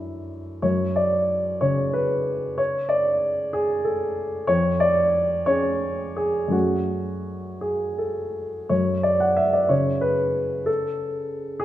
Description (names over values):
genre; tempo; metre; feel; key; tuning
neoclassical minimalist piano; 54-65 BPM (dotted quarters); 6/8; rubato; F# minor; A4 = 441 Hz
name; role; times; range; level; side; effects
warm upright piano; solo; 0.0-11.6 s; E#2 to F#5; -21 LUFS; equal; none
room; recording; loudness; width
wet recital hall reverb, RT60 1.6 s; recorded in a church or concert hall, faint mains hum; -20 LUFS; side -13 dB against mid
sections
0.0-8.7 A section; 8.7-11.6 A section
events
none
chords
0.0 Dadd9/F#; 0.6 F#m; 4.5 C#/E#; 6.5 F#madd9; 8.7 F#m